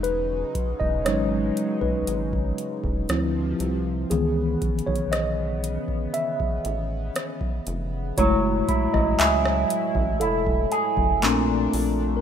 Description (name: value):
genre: contemporary R&B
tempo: 59 BPM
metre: 4/4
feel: straight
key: F# dorian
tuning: A4 = 440 Hz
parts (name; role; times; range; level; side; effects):
- mellow tine electric piano; accompaniment; 0.0-12.2 s; D#3 to E5; -25 LUFS; left 1 dB; medium stereo tremolo
- chorused pulse-width pad; sustained chords; 0.0-12.2 s; A2 to E4; -33 LUFS; left 1 dB; phaser
- rubbery square bass; bass; 0.0-12.2 s; E1 to D2; -28 LUFS; equal; none
- booming analog drum machine; drums; 0.0-12.0 s; handclaps, hi-hat, kick drum, rim click; -27 LUFS; equal; none
- electric guitar with an envelope filter; arpeggios; 8.2-12.2 s; A#2 to G#4; -25 LUFS; right 2 dB; ping-pong delay
room: light reverb, digital ambience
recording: rough home demo mix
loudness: -21 LUFS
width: side -8 dB against mid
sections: 0.0-8.2 A section; 8.2-12.2 B section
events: tine electric piano solo 0.0-8.2, 8.2-12.2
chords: 0.0 Emaj13; 3.1 Dm9; 4.1 C#m9; 8.2 F#m9; 11.2 A#maj7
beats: | 0.04 1.06 2.08 3.09 | 4.11 5.13 6.14 7.16 | 8.18 9.19 10.21 11.23